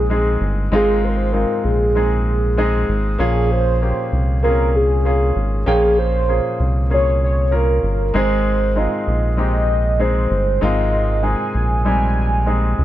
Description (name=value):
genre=piano-driven pop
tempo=97 BPM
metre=4/4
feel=straight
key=Ab major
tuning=A4 = 440 Hz
part: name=warm velvety synth lead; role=melody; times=0.0-12.7 s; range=Ab4 to Ab5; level=-20 LUFS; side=right 1 dB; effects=chorus
part: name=clear baby grand piano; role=accompaniment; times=0.0-12.8 s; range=Ab2 to G5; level=-21 LUFS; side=left 1 dB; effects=none
part: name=round analog bass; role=bass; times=0.0-12.8 s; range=G1 to Db2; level=-18 LUFS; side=equal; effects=none
room=light reverb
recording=dark, warm production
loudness=-15 LUFS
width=side -13 dB against mid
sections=0.0-12.8 A section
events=grand piano fill 2.3-3.2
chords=0.0 Ab; 3.2 Bbm7; 8.1 Ab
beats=0.11 | 0.73 1.34 1.96 2.58 | 3.20 3.82 4.44 5.06 | 5.67 6.29 6.91 7.53 | 8.15 8.77 9.38 10.00 | 10.62 11.24 11.86 12.48